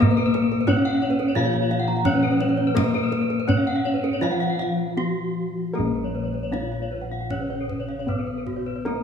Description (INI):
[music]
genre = Balinese gamelan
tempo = 77-91 BPM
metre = 4/4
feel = straight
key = Bb pelog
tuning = A4 = 440 Hz
[part]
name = gamelan-type bronze metallophone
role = melody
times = 0.0-9.0 s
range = Bb3 to Gb4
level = -24 LUFS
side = left 1 dB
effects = none
[part]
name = gamelan-type bronze metallophone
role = accompaniment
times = 0.0-9.0 s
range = Db3 to Bb3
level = -31 LUFS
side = left 2 dB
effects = none
[part]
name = gamelan-type bronze metallophone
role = arpeggios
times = 0.0-9.0 s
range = Bb4 to Gb5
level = -30 LUFS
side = left 3 dB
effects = none
[part]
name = gamelan-type bossed gongs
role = bass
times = 0.0-9.0 s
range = Bb1 to Bb4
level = -28 LUFS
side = left 1 dB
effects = none
[part]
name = kendang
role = percussion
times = 0.0-9.0 s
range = none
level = -27 LUFS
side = right 2 dB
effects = none
[part]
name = gamelan-type bronze metallophone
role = arpeggios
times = 0.1-9.0 s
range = Gb4 to Bb5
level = -31 LUFS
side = right 3 dB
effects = none
[sound]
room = moderate concert hall reverb, RT60 2.2 s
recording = small room ambience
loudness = -21 LUFS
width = side -7 dB against mid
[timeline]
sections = 0.0-5.7 A section; 5.7-9.0 B section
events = break 4.6-5.7; drum fill 5.2-5.7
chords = none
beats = | 0.01 0.68 1.35 2.05 | 2.76 3.48 4.22 4.97 | 5.74 6.52 7.30 8.08 | 8.86